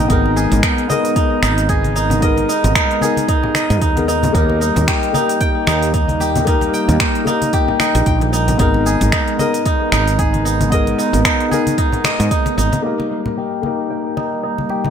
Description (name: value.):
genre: organic downtempo.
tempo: 113 BPM.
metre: 4/4.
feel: swing 57% on 16ths.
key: unclear.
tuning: A4 = 440 Hz.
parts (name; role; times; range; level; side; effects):
felt-muted upright piano; accompaniment; 0.0-14.9 s; Bb3 to Bb4; -22 LUFS; left 6 dB; sidechain pumping, low-pass filter, ping-pong delay.
warm analog pad; sustained chords; 0.0-14.9 s; G3 to Eb5; -23 LUFS; right 2 dB; chorus, sidechain pumping.
kora; arpeggios; 0.0-14.9 s; Eb4 to G5; -19 LUFS; right 1 dB; low-pass filter, ping-pong delay.
woody fretless electric bass; bass; 0.0-12.7 s; Ab1 to Ab2; -18 LUFS; right 1 dB; none.
electronic kick drum; drums; 0.1-12.4 s; none; -18 LUFS; right 1 dB; none.
organic electronic drum kit; drums; 0.1-12.8 s; finger snaps, hi-hat, shaker; -22 LUFS; right 1 dB; gated reverb.
congas; percussion; 0.3-14.9 s; none; -24 LUFS; left 2 dB; none.
room: moderate plate reverb, RT60 1.6 s.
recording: bright 1980s-style digital production.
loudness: -14 LUFS.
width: side -8 dB against mid.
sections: 0.0-12.8 A section; 12.8-14.9 B section.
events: filter sweep on kora 12.8-14.9; filter sweep on felt piano 12.8-14.9.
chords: 0.1 Abmadd9; 4.3 Eb; 8.6 Abmadd9; 12.8 Eb.